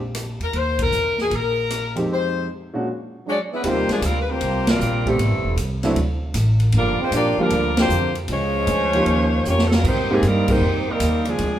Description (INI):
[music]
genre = jazz, big band swing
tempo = 155 BPM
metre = 4/4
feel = swing 66% on 8ths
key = Eb major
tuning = A4 = 439 Hz
[part]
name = upright bass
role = bass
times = 0.0-11.6 s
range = E1 to Ab2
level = -22 LUFS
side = equal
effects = none
[part]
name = swinging big-band drum kit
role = drums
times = 0.1-11.5 s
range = crash cymbal, hi-hat, kick drum, ride cymbal, rim click, snare drum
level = -26 LUFS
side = equal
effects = none
[part]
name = edgy saxophone section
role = melody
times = 0.4-11.6 s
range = Eb3 to D5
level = -22 LUFS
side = left 3 dB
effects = none
[part]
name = warm concert grand piano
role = accompaniment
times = 2.0-10.6 s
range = F2 to Bb4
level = -24 LUFS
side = right 1 dB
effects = none
[part]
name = clear trombone section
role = second line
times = 3.3-11.6 s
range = C3 to D4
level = -25 LUFS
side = right 4 dB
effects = none
[sound]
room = wet large studio reverb, RT60 1.4 s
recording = band playing live in one room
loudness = -18 LUFS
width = side -11 dB against mid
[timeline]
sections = 0.0-3.6 A section; 3.6-11.6 B section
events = band accent 0.7, 4.6, 7.7, 10.4; break 2.1-3.6; drum fill 9.5-9.8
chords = 0.0 N.C.; 0.5 Eb5; 2.1 Fm7; 2.9 E13/F# (rootless); 3.6 Eb69; 5.2 Am7; 6.0 D5; 6.7 Gm7; 8.3 Bbm9; 9.1 Eb9; 9.8 Abmaj9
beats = 0.15 | 0.54 0.93 1.31 1.70 | 2.09 2.48 2.87 3.25 | 3.64 4.03 4.42 4.80 | 5.19 5.58 5.97 6.36 | 6.74 7.13 7.52 7.91 | 8.29 8.68 9.07 9.46 | 9.85 10.23 10.62 11.01 | 11.40